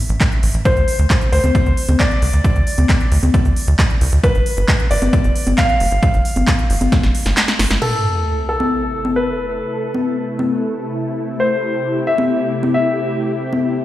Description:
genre	uplifting trance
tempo	134 BPM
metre	4/4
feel	straight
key	A minor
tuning	A4 = 438 Hz
part	warm concert grand piano	second line	0.0-13.8 s	A4 to F5	-21 LUFS	left 1 dB	tape echo
part	tight sequencer bass	bass	0.1-7.8 s	F1 to D2	-16 LUFS	equal	tube saturation, sidechain pumping
part	big-room dance drum kit	drums	0.1-13.6 s	congas, crash cymbal, handclaps, hi-hat, snare drum	-20 LUFS	left 2 dB	overdrive
part	electronic kick drum	drums	0.2-7.0 s	none	-16 LUFS	equal	overdrive
part	supersaw pad	sustained chords	7.8-13.8 s	C3 to A4	-22 LUFS	equal	phaser, sidechain pumping, low-pass filter
part	sub drop	sound effects	7.8-9.6 s	none	-23 LUFS	equal	none
room	light reverb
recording	played on a big sound system in a bare room, stone room reverb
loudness	-14 LUFS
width	side -14 dB against mid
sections	0.0-7.8 A section; 7.8-13.8 B section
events	drum fill 6.9-7.8; kick drops out 7.4-7.8; impact 7.8-9.6; filter sweep on supersaw synth 7.8-13.8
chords	0.0 A5; 0.7 Csus2; 4.2 N.C.; 7.8 Am

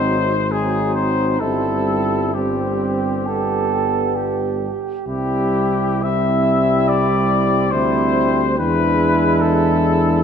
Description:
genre	classical, hymn-like piece for brass band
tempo	60-74 BPM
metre	4/4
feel	rubato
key	C major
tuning	A4 = 440 Hz
part	warm cornet	melody	0.0-10.2 s	G4 to E5	-20 LUFS	left 5 dB	none
part	warm flugelhorn	second line	0.0-10.2 s	C4 to A4	-24 LUFS	right 7 dB	none
part	clear euphonium	accompaniment	0.0-10.2 s	B3 to D4	-24 LUFS	left 1 dB	none
part	clear trombone	accompaniment	0.0-10.2 s	Gb3 to G#3	-24 LUFS	right 3 dB	none
part	mellow tuba	bass	0.0-10.2 s	G1 to E2	-22 LUFS	equal	none
room	moderate concert hall reverb, RT60 2.4 s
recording	none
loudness	-16 LUFS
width	side -7 dB against mid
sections	0.0-10.2 A section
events	none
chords	0.0 Ab7; 1.4 C/G; 3.3 G; 5.1 C; 8.6 E7

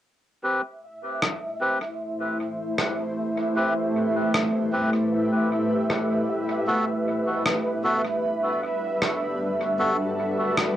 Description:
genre	ambient dub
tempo	77 BPM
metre	4/4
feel	swing 56% on 16ths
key	A dorian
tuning	A4 = 440 Hz
part	granular cloud pad	sustained chords	1.9-10.8 s	G3 to C5	-25 LUFS	equal	built-in reverb, cassette tape
part	melodica	stabs	0.4-10.0 s	B3 to B4	-27 LUFS	equal	low-pass filter, cassette tape, dub echo
part	bubbling stepped-filter texture	texture	0.8-10.8 s	E5	-30 LUFS	right 2 dB	chorus, built-in reverb, cassette tape
part	electronic rim click	drums	1.2-10.7 s	none	-28 LUFS	equal	dub echo
room	moderate studio reverb, RT60 0.6 s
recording	home recording on cassette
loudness	-22 LUFS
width	side -12 dB against mid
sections	0.4-10.8 A section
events	none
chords	0.4 Am7; 6.7 Gmaj7

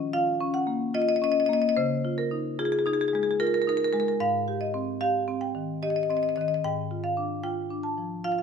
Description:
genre	classical, contemporary piece for solo marimba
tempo	74 BPM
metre	3/4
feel	rubato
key	unclear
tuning	A4 = 440 Hz
part	marimba with medium hard mallets	solo	0.0-8.4 s	Ab2 to A5	-24 LUFS	left 1 dB	none
room	moderate recital hall reverb, RT60 1.3 s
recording	minimal, uncompressed stereo recording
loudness	-24 LUFS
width	side -6 dB against mid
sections	0.0-8.4 A section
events	none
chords	0.0 Ebsus2; 1.8 Db69; 4.2 Abmaj7; 6.6 Fm69/Ab

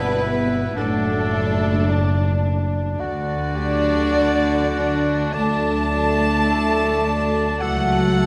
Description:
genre	classical, slow romantic movement for symphony orchestra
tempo	53 BPM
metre	4/4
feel	rubato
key	D major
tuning	A4 = 440 Hz
part	warm chamber violin section	melody	0.0-8.3 s	A3 to D4	-29 LUFS	equal	none
part	clear oboe	second line	0.0-8.3 s	D4 to D5	-32 LUFS	equal	none
part	warm chamber violin section	second line	0.0-8.3 s	A4 to A5	-28 LUFS	equal	none
part	warm clarinet	second line	0.0-8.3 s	A4 to A5	-31 LUFS	equal	none
part	dark chamber viola section	accompaniment	0.0-8.3 s	E3 to A3	-32 LUFS	equal	none
part	mellow bassoon	accompaniment	0.0-8.3 s	D4 to G4	-32 LUFS	equal	none
part	mellow French horn section	sustained chords	0.0-8.3 s	A3 to A4	-29 LUFS	equal	none
part	dark chamber cello section	bass	0.0-8.3 s	A2 to A3	-28 LUFS	equal	none
part	dark chamber double bass section	bass	0.0-8.3 s	F#1 to D2	-26 LUFS	equal	none
room	wet scoring stage reverb, RT60 1.6 s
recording	none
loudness	-20 LUFS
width	mono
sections	0.0-8.3 A section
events	none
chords	0.0 Em/G; 0.8 D/F#; 3.0 D; 7.6 A/C#

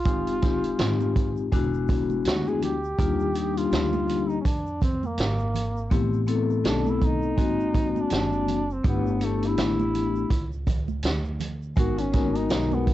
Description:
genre	hip hop, jazz-hop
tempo	82 BPM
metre	4/4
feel	swing 58% on 16ths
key	unclear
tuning	A4 = 440 Hz
part	mellow duduk	melody	0.0-12.9 s	A3 to G#4	-29 LUFS	right 1 dB	cassette tape
part	vibraphone with medium mallets	accompaniment	0.0-12.9 s	G3 to A#4	-26 LUFS	left 6 dB	none
part	upright bass	bass	0.0-12.9 s	E1 to E#2	-30 LUFS	right 1 dB	none
part	vintage drum kit	drums	0.1-12.9 s	hi-hat, kick drum, snare drum	-26 LUFS	right 1 dB	cassette tape
part	egg shaker and congas	percussion	0.1-12.9 s	none	-36 LUFS	right 10 dB	none
room	light reverb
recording	home recording on cassette, nothing above 8.0 kHz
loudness	-22 LUFS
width	side -14 dB against mid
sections	0.0-12.9 A section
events	duduk solo 0.0-12.9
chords	0.1 Fm9; 1.5 E9; 3.0 D#maj7; 5.9 Am9; 7.4 G#9; 8.8 G69; 11.8 G#m9

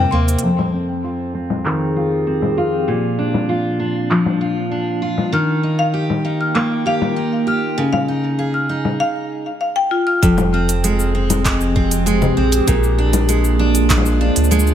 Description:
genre	folktronica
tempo	98 BPM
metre	4/4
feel	straight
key	F minor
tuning	A4 = 440 Hz
part	marimba with hard mallets	second line	0.0-0.3, 5.3-10.2 s	F4 to F6	-21 LUFS	left 2 dB	tape echo
part	picked steel-string acoustic guitar	arpeggios	0.0-14.7 s	F2 to Ab4	-18 LUFS	equal	low-pass filter, tape echo
part	warm sub bass	bass	0.0-0.4, 10.2-14.7 s	F1 to Eb2	-18 LUFS	equal	tube saturation
part	organic electronic drum kit	drums	0.3-14.7 s	cabasa, congas, handclaps, hi-hat	-22 LUFS	left 3 dB	overdrive, low-pass filter on hats, small room ambience, low-pass filter on perc, low-pass filter on snare
part	warbly tape-like pad	sustained chords	1.6-14.7 s	Bb2 to G5	-23 LUFS	equal	chorus, built-in reverb, phaser
part	electronic kick drum	drums	10.2-14.0 s	none	-18 LUFS	equal	overdrive, small room ambience
room	light reverb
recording	none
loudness	-15 LUFS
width	side -10 dB against mid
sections	0.4-10.2 A section; 10.2-14.7 B section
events	break 0.0-0.4; filter sweep on steel-string acoustic guitar 0.4-10.2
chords	0.4 Fm7; 2.9 Bb7; 5.3 Eb; 7.8 Dbsus2; 10.2 Fm; 12.7 Bb7

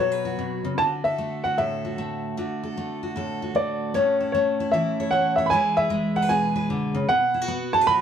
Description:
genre	country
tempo	152 BPM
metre	4/4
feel	swing 65% on 8ths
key	A major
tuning	A4 = 440 Hz
part	dark upright piano	melody	0.0-7.9 s	C#5 to B5	-22 LUFS	equal	none
part	picked steel-string acoustic guitar	accompaniment	0.0-8.0 s	A2 to C#5	-26 LUFS	equal	none
room	moderate studio reverb, RT60 0.7 s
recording	dark, warm production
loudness	-21 LUFS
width	side -8 dB against mid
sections	0.0-4.0 A section; 4.0-8.0 B section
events	none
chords	0.0 B5; 0.8 Dadd9; 4.0 A; 5.5 E; 7.1 B5

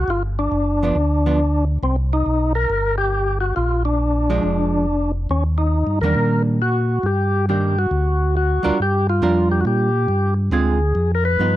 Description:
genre	jazz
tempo	138 BPM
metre	4/4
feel	swing 66% on 8ths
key	unclear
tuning	A4 = 439 Hz
part	percussive tonewheel organ	melody	0.0-11.6 s	C4 to Cb5	-21 LUFS	left 1 dB	slow rotary speaker
part	mellow tonewheel organ	bass	0.0-11.6 s	F1 to Bb2	-20 LUFS	equal	slow rotary speaker
part	archtop guitar, miked and amplified	accompaniment	0.8-1.4, 4.3-11.6 s	D3 to Bb4	-22 LUFS	right 4 dB	none
room	little or no reverb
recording	dry, close 1970s-style studio recording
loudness	-17 LUFS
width	side -14 dB against mid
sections	0.0-8.8 A section; 8.8-11.6 B section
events	none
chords	0.1 G7; 1.8 Cm7; 3.6 Bb7; 5.3 Ebmaj7; 7.9 D; 8.8 Gm7; 10.5 Dm7b5

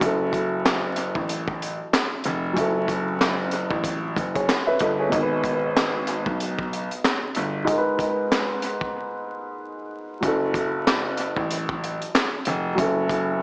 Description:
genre	hip hop, boom-bap hip-hop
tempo	94 BPM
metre	4/4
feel	swing 58% on 16ths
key	F# dorian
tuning	A4 = 440 Hz
part	dark upright piano	accompaniment	0.0-13.4 s	G#2 to E5	-26 LUFS	equal	high-pass filter, low-pass filter, analog delay
part	warm grand piano	bass	0.0-13.4 s	E#1 to B1	-27 LUFS	equal	none
part	crunchy breakbeat drum kit	drums	0.0-13.3 s	handclaps, hi-hat, kick drum, snare drum	-24 LUFS	equal	analog delay
room	light reverb, small room ambience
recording	echo-heavy mix, vinyl crackle, small speaker sound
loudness	-21 LUFS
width	side -33 dB against mid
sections	0.0-13.4 A section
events	break 9.0-10.2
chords	0.0 F#m7; 5.1 G#m; 10.2 F#m7

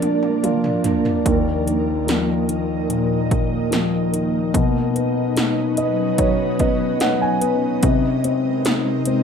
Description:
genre	pop ballad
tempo	73 BPM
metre	4/4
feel	straight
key	Eb minor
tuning	A4 = 440 Hz
part	dark grand piano	accompaniment	0.0-9.2 s	Eb2 to Ab5	-20 LUFS	left 2 dB	none
part	ethereal airy pad	sustained chords	0.0-9.2 s	C3 to Eb5	-22 LUFS	right 2 dB	ensemble chorus, built-in reverb
part	80s electronic pad drums	drums	0.0-9.2 s	hi-hat, kick drum, snare drum, toms	-22 LUFS	right 1 dB	gated reverb on snare and toms, overdrive
room	wet small room reverb, RT60 0.5 s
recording	rough home demo mix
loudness	-17 LUFS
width	side -6 dB against mid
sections	0.0-9.2 A section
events	drum fill 0.0-1.3; grand piano fill 5.4-7.8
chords	0.0 Bb; 1.3 Ebsus2; 4.5 Badd9; 7.8 Abadd9/C

